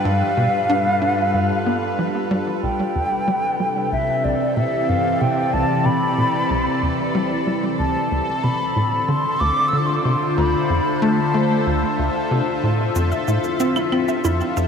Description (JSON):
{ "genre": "ambient, sequencer-driven space music", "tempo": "93 BPM", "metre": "4/4", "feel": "straight", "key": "unclear", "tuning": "A4 = 440 Hz", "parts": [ { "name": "mellow hollow silver concert flute", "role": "melody", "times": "0.0-12.6 s", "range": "D5 to E6", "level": "-22 LUFS", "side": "equal", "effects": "shimmer reverb, tape echo" }, { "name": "evolving wavetable pad", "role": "sustained chords", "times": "0.0-14.7 s", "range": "C3 to E5", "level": "-22 LUFS", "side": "left 1 dB", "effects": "phaser, built-in reverb, shimmer reverb" }, { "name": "tight sequencer bass", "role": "riff", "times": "0.0-14.7 s", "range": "C2 to D4", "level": "-23 LUFS", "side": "equal", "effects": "wide subtle chorus, shimmer reverb, tape echo" }, { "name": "analog drone", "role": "bass", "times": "0.0-2.6 s", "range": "G2", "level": "-30 LUFS", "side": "right 1 dB", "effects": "chorus" }, { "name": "bubbling stepped-filter texture", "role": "texture", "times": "0.0-14.7 s", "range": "A4", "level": "-32 LUFS", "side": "left 2 dB", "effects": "chorus, built-in reverb, shimmer reverb" }, { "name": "cabasa and claves", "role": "percussion", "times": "13.0-14.7 s", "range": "none", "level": "-32 LUFS", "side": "right 5 dB", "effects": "tape echo" }, { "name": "wide unison pluck", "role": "arpeggios", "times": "13.1-14.7 s", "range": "E4 to E5", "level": "-26 LUFS", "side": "right 3 dB", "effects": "auto-pan, shimmer reverb, tape echo" } ], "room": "wet cathedral reverb, RT60 6.0 s", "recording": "in a vast, echoing space", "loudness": "-17 LUFS", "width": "side -6 dB against mid", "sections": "0.0-2.6 A section; 2.6-14.7 B section", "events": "none", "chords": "0.0 G7; 2.6 Cmaj7; 7.8 Dm7; 13.0 Fmaj7" }